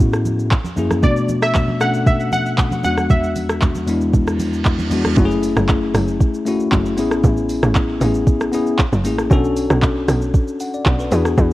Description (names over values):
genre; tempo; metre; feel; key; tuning
amapiano; 116 BPM; 4/4; straight; F# minor; A4 = 439 Hz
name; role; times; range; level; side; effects
glassy wavetable pluck; melody; 0.0-4.6 s; C#5 to F#5; -21 LUFS; equal; chorus, digital delay
bell-like tine electric piano; accompaniment; 0.0-11.5 s; E2 to F#5; -19 LUFS; left 2 dB; none
smooth R&B drum kit; drums; 0.0-11.5 s; handclaps, hi-hat, kick drum, rim click, shaker; -18 LUFS; right 1 dB; none
congas; percussion; 0.0-5.2 s; none; -27 LUFS; right 3 dB; none
reverse cymbal; sound effects; 4.3-5.2 s; none; -31 LUFS; right 6 dB; none
tight log drum bass; bass; 5.2-11.5 s; F#1 to E2; -19 LUFS; right 1 dB; none
room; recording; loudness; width
light reverb; worn, warbling old tape, cassette tape, warbly pitch drift; -15 LUFS; side -17 dB against mid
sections
0.0-5.2 A section; 5.2-11.5 B section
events
reverse cymbal 4.3-5.2; drop 5.2-11.5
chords
0.0 Amaj7; 0.5 F#7; 1.0 Bm7; 2.8 E7; 5.2 F#m7; 7.0 Amaj7; 8.8 F#7; 9.3 Bm7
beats
0.00 0.51 | 1.03 1.55 2.07 2.58 | 3.10 3.62 4.13 4.65 | 5.17 5.69 6.20 6.72 | 7.24 7.75 8.27 8.79 | 9.31 9.82 10.34 10.86 | 11.38